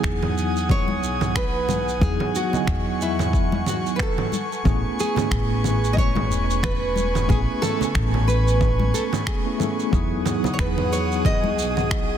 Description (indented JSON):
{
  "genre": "sunset chillout",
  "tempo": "91 BPM",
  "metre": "4/4",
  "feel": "swing 57% on 16ths",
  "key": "E major",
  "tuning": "A4 = 440 Hz",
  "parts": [
    { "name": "nylon-string guitar", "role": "melody", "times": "0.0-12.2 s", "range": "E4 to D#5", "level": "-27 LUFS", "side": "right 2 dB", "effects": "tape echo" },
    { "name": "mellow tine electric piano", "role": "accompaniment", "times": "0.0-12.2 s", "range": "F#3 to G#5", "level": "-27 LUFS", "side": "moving between left 5 dB and right 5 dB", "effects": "medium stereo tremolo, auto-pan, low-pass filter, tape echo" },
    { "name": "airy breathy pad", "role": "sustained chords", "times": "0.0-12.2 s", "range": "G#4 to D#6", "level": "-30 LUFS", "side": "equal", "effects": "chorus" },
    { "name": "upright bass", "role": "bass", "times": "0.0-12.2 s", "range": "E1 to E2", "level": "-24 LUFS", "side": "equal", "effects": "none" },
    { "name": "electronic finger snaps, shaker and congas", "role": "drums", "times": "0.0-12.1 s", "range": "none", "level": "-28 LUFS", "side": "right 3 dB", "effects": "soft clipping on snare" },
    { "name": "electronic kick drum", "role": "drums", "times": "0.0-12.1 s", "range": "none", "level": "-24 LUFS", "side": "equal", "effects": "none" },
    { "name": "congas", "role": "percussion", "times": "0.9-11.6 s", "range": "none", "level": "-30 LUFS", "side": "left 4 dB", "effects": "none" },
    { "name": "wind-like tuned noise texture", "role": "texture", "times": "10.3-12.2 s", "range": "F#4 to G#5", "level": "-34 LUFS", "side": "left 1 dB", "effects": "built-in reverb" }
  ],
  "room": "light reverb",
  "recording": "dense, heavily limited modern master",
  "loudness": "-19 LUFS",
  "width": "side -9 dB against mid",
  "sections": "0.0-12.2 A section",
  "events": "none",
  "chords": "0.0 Emaj9; 4.3 Amaj9; 9.9 Emaj9"
}